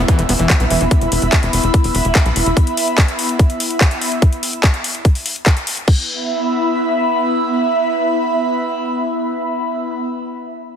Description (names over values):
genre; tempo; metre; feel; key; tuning
psychedelic trance; 145 BPM; 4/4; straight; unclear; A4 = 440 Hz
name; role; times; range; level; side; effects
screaming distorted acid line; riff; 0.0-0.8 s; E3 to B3; -21 LUFS; left 1 dB; distortion, chorus, auto-pan, cassette tape, sidechain pumping, tape echo
tight sequencer bass; bass; 0.0-2.5 s; E1 to B1; -18 LUFS; equal; none
downlifter; sound effects; 0.0-2.6 s; none; -29 LUFS; equal; none
airy breathy pad; texture; 0.0-9.9 s; B3 to B5; -18 LUFS; equal; chorus, phaser, sidechain pumping
electronic kick drum; drums; 0.1-6.0 s; none; -12 LUFS; equal; none
garage drum kit; drums; 0.1-6.0 s; crash cymbal, handclaps, hi-hat; -20 LUFS; left 1 dB; none
room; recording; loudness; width
moderate lush hall reverb, RT60 1.7 s; heavily compressed radio sound, multiband compression; -14 LUFS; side -8 dB against mid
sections
0.0-5.9 A section; 5.9-9.2 B section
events
filter sweep on analog synth bass 0.0-2.6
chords
0.0 E5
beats
0.08 0.50 | 0.91 1.32 1.74 2.15 | 2.57 2.98 3.39 3.81 | 4.22 4.64 5.05 5.46 | 5.88 6.29 6.71 7.12 | 7.53 7.95 8.36 8.77